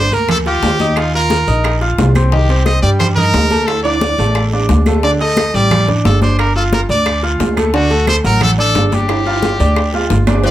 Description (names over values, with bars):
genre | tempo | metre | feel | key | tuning
latin, salsa | 177 BPM | 4/4 | straight | G minor | A4 = 439 Hz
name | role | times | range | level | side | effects
brilliant trumpet | melody | 0.0-10.5 s | F4 to Eb5 | -17 LUFS | equal | none
clear concert grand piano | accompaniment | 0.0-10.5 s | D3 to F6 | -18 LUFS | equal | none
upright bass | bass | 0.0-10.5 s | G1 to G2 | -15 LUFS | equal | none
bongos and cowbell | percussion | 0.1-10.5 s | none | -24 LUFS | left 4 dB | none
congas | percussion | 0.1-10.5 s | none | -20 LUFS | equal | none
guiro | percussion | 0.1-10.5 s | none | -31 LUFS | right 4 dB | none
claves | percussion | 0.3-10.4 s | none | -29 LUFS | right 4 dB | none
timbales and agogo bells | percussion | 0.3-10.5 s | none | -23 LUFS | right 6 dB | none
room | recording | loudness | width
light reverb | close, detailed microphones | -11 LUFS | side -13 dB against mid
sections
0.0-10.4 A section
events
drum fill 3.7-5.0, 9.1-10.4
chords
0.0 Gm7; 1.0 Ebsus2; 2.3 Cm; 3.7 D5; 5.0 Dsus4; 6.4 G5; 7.7 D; 9.1 G5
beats
0.29 0.63 | 0.97 1.31 1.65 1.99 | 2.33 2.66 3.00 3.34 | 3.68 4.02 4.36 4.70 | 5.03 5.37 5.71 6.05 | 6.39 6.73 7.06 7.40 | 7.74 8.08 8.42 8.75 | 9.09 9.43 9.77 10.11 | 10.44